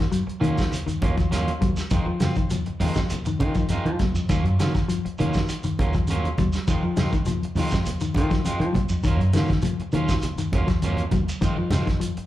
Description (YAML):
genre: afrobeat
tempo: 101 BPM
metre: 4/4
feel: straight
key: Eb dorian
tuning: A4 = 442 Hz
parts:
  - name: mellow electric guitar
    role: arpeggios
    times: 0.0-12.2 s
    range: Db3 to Gb3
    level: -28 LUFS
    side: left 5 dB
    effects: slapback echo
  - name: electric guitar at the edge of break-up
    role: stabs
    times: 0.0-12.2 s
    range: Eb3 to F4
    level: -31 LUFS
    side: right 3 dB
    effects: slapback echo
  - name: fingered electric bass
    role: bass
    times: 0.0-12.2 s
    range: Eb2 to F3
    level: -25 LUFS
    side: equal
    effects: none
  - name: warm soul drum kit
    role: drums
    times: 0.0-12.3 s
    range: hi-hat, kick drum, snare drum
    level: -27 LUFS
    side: equal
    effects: none
  - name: congas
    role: percussion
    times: 0.1-12.2 s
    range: none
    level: -30 LUFS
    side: right 1 dB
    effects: slapback echo
  - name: shekere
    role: percussion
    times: 0.1-12.2 s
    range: none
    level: -34 LUFS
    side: right 1 dB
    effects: none
room: studio reverb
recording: live gig heard through the venue's PA, club reverb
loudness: -21 LUFS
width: side -14 dB against mid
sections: 0.0-12.3 A section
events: none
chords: 0.0 Ebm9; 1.9 Fm7; 4.3 Ebm9; 6.7 Fm7; 9.1 Ebm9; 11.4 Fm7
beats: 0.14 0.73 1.33 | 1.92 2.52 3.11 3.71 | 4.30 4.89 5.49 6.08 | 6.68 7.27 7.87 8.46 | 9.05 9.65 10.24 10.83 | 11.43 12.02